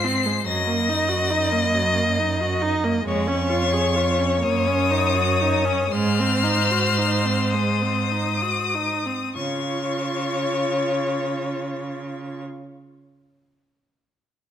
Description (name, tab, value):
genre	classical, slow romantic movement for string quartet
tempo	31-48 BPM (dotted quarters)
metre	6/8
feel	rubato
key	Db major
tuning	A4 = 440 Hz
part	clear violin	melody	0.0-12.4 s	Db6 to C7	-26 LUFS	left 8 dB	none
part	rich violin	second line	0.0-12.4 s	C5 to Eb5	-25 LUFS	left 4 dB	none
part	rich viola	accompaniment	0.0-12.4 s	Gb3 to Ab4	-26 LUFS	right 3 dB	none
part	rich cello	bass	0.0-12.4 s	F2 to Db3	-25 LUFS	right 3 dB	none
room	moderate recital hall reverb, RT60 1.6 s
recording	none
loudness	-19 LUFS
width	side -9 dB against mid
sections	0.0-9.3 A section; 9.3-13.0 B section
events	slowing down 1.7-9.3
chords	0.5 Ebm/Gb; 3.1 Db/F; 4.4 Ebm7/Gb; 5.9 Ab7; 9.3 Db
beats	| 0.46 1.74 | 3.07 4.44 | 5.92 7.53 | 9.35 11.15